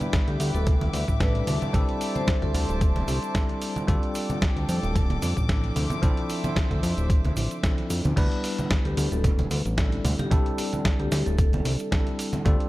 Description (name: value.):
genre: nu-disco, nu disco.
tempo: 112 BPM.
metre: 4/4.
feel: swing 54% on 16ths.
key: unclear.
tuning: A4 = 440 Hz.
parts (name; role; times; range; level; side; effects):
bell-like tine electric piano; accompaniment; 0.0-12.7 s; F3 to B4; -31 LUFS; left 1 dB; medium stereo tremolo, slapback echo.
warm chamber violin section; sustained chords; 0.0-8.1 s; A4 to D6; -34 LUFS; left 1 dB; vintage 12-bit sampler grit, sidechain pumping.
dusty soul sampler-style drum kit; drums; 0.0-12.7 s; crash cymbal, hi-hat, snare drum; -32 LUFS; equal; none.
congas and cabasa; percussion; 0.0-12.6 s; none; -32 LUFS; right 2 dB; none.
electronic kick drum; drums; 0.1-12.6 s; none; -24 LUFS; equal; none.
vibraphone with hard mallets; melody; 0.3-2.8, 8.9-12.0 s; G4 to C5; -35 LUFS; left 1 dB; analog delay.
fat analog bass; bass; 0.3-12.6 s; D1 to F2; -26 LUFS; equal; none.
room: light reverb, digital ambience.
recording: dark, warm production.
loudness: -22 LUFS.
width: side -17 dB against mid.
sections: 0.0-8.2 A section; 8.2-12.7 B section.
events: drop 8.2-12.7.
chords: 0.0 Em7/D; 1.5 C69/D; 3.9 F69/D; 5.8 Dm9; 8.2 Em7/D; 10.0 C69/D.